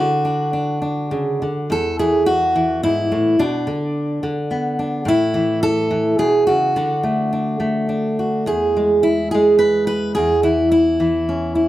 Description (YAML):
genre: folk, solo fingerstyle acoustic guitar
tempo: 106 BPM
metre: 3/4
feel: rubato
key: E mixolydian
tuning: A4 = 440 Hz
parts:
  - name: fingerpicked steel-string acoustic guitar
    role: solo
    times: 0.0-11.7 s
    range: E2 to B4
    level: -16 LUFS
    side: equal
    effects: none
room: wet studio ambience, RT60 0.5 s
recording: heard from further back in the room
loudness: -16 LUFS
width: side -14 dB against mid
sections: 0.0-1.7 A section; 1.7-11.7 B section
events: none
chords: 0.0 D; 1.7 Esus4; 3.4 Bm; 5.1 A; 6.8 D; 8.5 E; 10.2 C#m/E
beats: 0.53 1.11 | 1.70 2.26 2.83 | 3.40 3.96 4.52 | 5.07 5.63 6.19 | 6.75 7.32 7.89 | 8.47 9.05 9.62 | 10.17 10.72 11.28